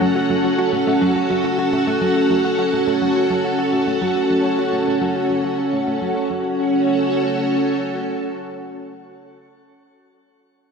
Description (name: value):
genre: ambient, sequencer-driven space music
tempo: 105 BPM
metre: 4/4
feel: straight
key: F# minor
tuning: A4 = 442 Hz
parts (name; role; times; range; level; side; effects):
- string machine, full ensemble; sustained chords; 0.0-9.3 s; C#4 to A4; -18 LUFS; equal; ensemble chorus, shimmer reverb
- analog pluck; riff; 0.0-6.6 s; F#3 to F#4; -25 LUFS; right 1 dB; chorus, ping-pong delay
- bubbling stepped-filter texture; texture; 0.0-6.3 s; F#4 to F#5; -28 LUFS; equal; chorus, built-in reverb, shimmer reverb
room: wet plate reverb, RT60 2.5 s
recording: dark, warm production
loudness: -17 LUFS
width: side -5 dB against mid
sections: 0.0-6.3 A section; 6.3-8.6 B section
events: fade-out on synth arpeggio sound 0.0-6.3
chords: 0.0 F#m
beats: 0.01 0.59 1.16 | 1.73 2.30 2.87 3.44 | 4.01 4.59 5.16 5.73 | 6.30 6.87 7.44 8.02